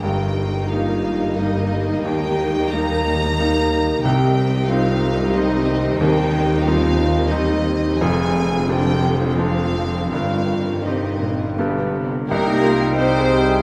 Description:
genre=classical, romantic movement for piano and orchestra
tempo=80-93 BPM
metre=3/4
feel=rubato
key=Eb major, C minor from 4.0 s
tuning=A4 = 437 Hz
part: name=clear baby grand piano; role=melody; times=0.0-13.6 s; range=F1 to Ab4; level=-24 LUFS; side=equal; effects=none
part: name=warm studio violin section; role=melody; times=0.0-13.6 s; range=Bb4 to Bb5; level=-30 LUFS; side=equal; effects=none
part: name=rich studio violin section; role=second line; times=0.0-13.6 s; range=G3 to C5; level=-30 LUFS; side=equal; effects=none
part: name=dark studio viola section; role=accompaniment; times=0.0-13.6 s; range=D3 to G4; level=-29 LUFS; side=equal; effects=none
part: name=mellow French horn section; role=sustained chords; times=0.0-13.6 s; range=G3 to Bb4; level=-28 LUFS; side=equal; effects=none
part: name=rich studio double bass section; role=bass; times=0.0-13.6 s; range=F1 to Eb2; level=-28 LUFS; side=equal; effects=none
part: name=warm chamber cello section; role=bass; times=0.0-13.6 s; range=C2 to C4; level=-28 LUFS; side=equal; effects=none
part: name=dark cor anglais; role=second line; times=12.3-13.6 s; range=Eb5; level=-31 LUFS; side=equal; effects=none
part: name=small flute group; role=second line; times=12.3-13.6 s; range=G5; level=-29 LUFS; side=equal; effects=none
part: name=warm clarinet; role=second line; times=12.3-13.6 s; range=G3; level=-32 LUFS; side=equal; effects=none
part: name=mellow bassoon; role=accompaniment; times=12.3-13.6 s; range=Eb4 to G4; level=-28 LUFS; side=equal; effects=none
room=moderate scoring stage reverb, RT60 1.9 s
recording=none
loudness=-19 LUFS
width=mono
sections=0.0-12.3 A section; 12.3-13.6 B section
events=none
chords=0.0 Eb/G; 2.0 Eb; 4.0 Cm; 6.0 Cm/Eb; 8.0 Dm7b5/F; 10.1 Cm/G; 11.6 G; 12.3 Cm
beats=| 0.02 0.70 1.38 | 2.05 2.72 3.38 | 4.03 4.69 5.34 | 5.99 6.64 7.30 | 8.01 8.68 9.38 | 10.11 10.84 11.56 | 12.29 12.96

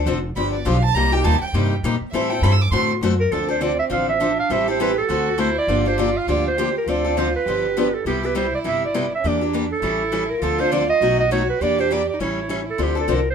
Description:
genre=acoustic string swing (jazz manouche)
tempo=203 BPM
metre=4/4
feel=swing 59% on 8ths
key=D minor from 3.3 s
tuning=A4 = 440 Hz
part: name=warm violin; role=second line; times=0.0-12.8 s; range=C4 to E6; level=-26 LUFS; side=right 6 dB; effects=none
part: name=picked steel-string acoustic guitar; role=accompaniment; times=0.0-13.2 s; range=B2 to A4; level=-23 LUFS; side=left 4 dB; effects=none
part: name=upright bass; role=bass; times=0.0-13.3 s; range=F1 to Bb2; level=-24 LUFS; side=equal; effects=none
part: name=breathy clarinet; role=melody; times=3.2-13.3 s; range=G4 to F5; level=-22 LUFS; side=right 3 dB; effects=none
room=moderate studio reverb, RT60 0.5 s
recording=minimal, uncompressed stereo recording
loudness=-18 LUFS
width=side -7 dB against mid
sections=0.0-3.3 A section; 3.3-12.8 B section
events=violin solo 0.0-3.3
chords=0.4 G7; 0.9 Cm7; 2.1 Am7; 2.7 D7; 3.3 Dm9; 4.5 Am7; 5.1 D7; 5.7 Gm7; 6.9 Dm7; 7.5 G7; 8.0 Cmaj7; 9.2 Em7b5; 9.8 A7; 10.4 Dm7; 11.0 B7; 11.6 Em7b5; 12.2 A7; 12.8 Dm7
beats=0.06 0.35 0.65 | 0.95 1.24 1.54 1.83 | 2.13 2.42 2.72 3.02 | 3.31 3.61 3.90 4.20 | 4.50 4.79 5.09 5.38 | 5.68 5.97 6.27 6.57 | 6.86 7.16 7.45 7.75 | 8.05 8.34 8.64 8.94 | 9.23 9.53 9.82 10.12 | 10.42 10.71 11.01 11.30 | 11.60 11.90 12.19 12.49 | 12.79 13.08

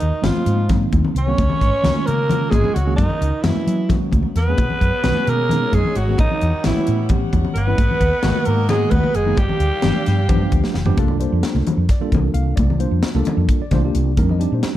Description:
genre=electric jazz fusion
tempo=263 BPM (eighths)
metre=7/8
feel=straight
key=G# minor, C minor from 11.0 s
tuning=A4 = 440 Hz
part: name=growling alto saxophone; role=melody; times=0.0-10.8 s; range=D#4 to C#5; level=-23 LUFS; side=right 1 dB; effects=none
part: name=breathy tenor saxophone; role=second line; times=0.0-10.8 s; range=D#3 to C#4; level=-28 LUFS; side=right 4 dB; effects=none
part: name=woody fretless electric bass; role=bass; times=0.0-14.7 s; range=F1 to F#3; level=-20 LUFS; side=equal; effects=none
part: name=crisp fusion drum kit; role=drums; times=0.0-14.7 s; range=hi-hat, kick drum, snare drum, toms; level=-21 LUFS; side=equal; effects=none
part: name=tine electric piano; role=accompaniment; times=0.2-14.8 s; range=D#3 to F5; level=-24 LUFS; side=equal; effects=medium stereo tremolo
part: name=congas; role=percussion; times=0.2-14.6 s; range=none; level=-24 LUFS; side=left 2 dB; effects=none
part: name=rich chamber string section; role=sustained chords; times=4.6-11.0 s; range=G3 to G5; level=-33 LUFS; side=equal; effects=none
room=light reverb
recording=dark, warm production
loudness=-15 LUFS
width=side -13 dB against mid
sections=0.0-11.0 A section; 11.0-14.8 B section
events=drum fill 10.4-11.0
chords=0.0 G#13; 1.4 C#69; 3.0 F#9; 4.6 B69; 6.2 A13; 7.8 G#m7; 9.4 G7; 11.0 C13sus4; 14.2 F13sus4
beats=0.01 0.24 0.47 0.70 0.93 1.16 | 1.39 1.61 1.84 2.07 2.30 2.53 2.76 | 2.98 3.21 3.44 3.67 3.90 4.13 4.36 | 4.58 4.81 5.04 5.27 5.50 5.73 5.95 | 6.18 6.41 6.64 6.87 7.09 7.32 7.55 | 7.78 8.01 8.24 8.46 8.69 8.92 9.15 | 9.38 9.61 9.83 10.06 10.29 10.52 10.75 | 10.98 11.20 11.43 11.66 11.89 12.12 12.35 | 12.58 12.80 13.03 13.26 13.49 13.72 13.95 | 14.18 14.41 14.63

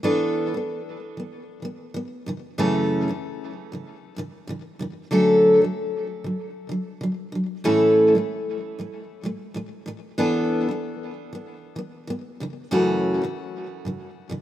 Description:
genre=pop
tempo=95 BPM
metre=4/4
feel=swing 60% on 16ths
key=unclear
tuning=A4 = 437 Hz
part: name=picked steel-string acoustic guitar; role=solo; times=0.0-14.4 s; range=F#2 to A4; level=-21 LUFS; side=equal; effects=ping-pong delay
room=light reverb, small room ambience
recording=rough home demo mix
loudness=-20 LUFS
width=side -12 dB against mid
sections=0.0-14.4 A section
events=none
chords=0.0 E7sus4; 2.3 F#m7; 5.1 Dmaj7; 7.6 A; 10.2 E7sus4; 12.4 F#m7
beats=| 0.03 0.67 1.30 1.94 | 2.57 3.21 3.84 4.48 | 5.11 5.75 6.38 7.01 | 7.65 8.28 8.92 9.55 | 10.18 10.82 11.45 12.08 | 12.72 13.35 13.98

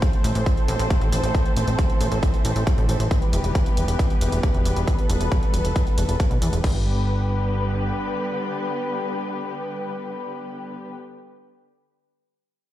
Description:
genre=uplifting trance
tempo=136 BPM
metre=4/4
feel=straight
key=G major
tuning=A4 = 441 Hz
part: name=muted studio string section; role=sustained chords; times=0.0-10.9 s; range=D3 to C5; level=-26 LUFS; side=equal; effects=sidechain pumping
part: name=electronic kick drum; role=drums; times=0.0-6.7 s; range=none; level=-21 LUFS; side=equal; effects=overdrive
part: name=punchy analog drum machine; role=drums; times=0.0-6.7 s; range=crash cymbal, hi-hat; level=-35 LUFS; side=right 1 dB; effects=overdrive, sidechain pumping on hats, sidechain pumping on cymbals
part: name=plucky analog bass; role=bass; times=0.2-7.9 s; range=E1 to E2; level=-23 LUFS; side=equal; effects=sidechain pumping
room=little or no reverb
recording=played on a big sound system in a bare room, stone room reverb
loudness=-20 LUFS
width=side -13 dB against mid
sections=0.0-6.6 A section; 6.6-10.2 B section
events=filter sweep on analog synth bass 0.0-6.6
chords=0.0 Am; 3.1 Em; 6.6 G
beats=0.02 0.46 0.90 | 1.34 1.79 2.23 2.67 | 3.11 3.55 3.99 4.43 | 4.88 5.32 5.76 6.20 | 6.64 7.08 7.52 7.96 | 8.40 8.85 9.29 9.73

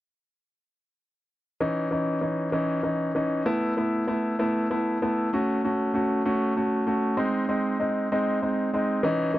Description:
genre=pop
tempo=65 BPM (dotted quarters)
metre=6/8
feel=straight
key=C# minor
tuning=A4 = 440 Hz
part: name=bright concert grand piano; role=accompaniment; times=1.6-9.4 s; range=E3 to F#4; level=-23 LUFS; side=equal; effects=none
room=small room ambience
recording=dry, close 1970s-style studio recording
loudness=-23 LUFS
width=side -15 dB against mid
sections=1.6-9.0 A section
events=none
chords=1.6 C#madd9; 3.5 Asus2; 5.3 F#m; 7.2 G#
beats=| 1.61 2.54 | 3.47 4.40 | 5.33 6.26 | 7.18 8.12 | 9.04

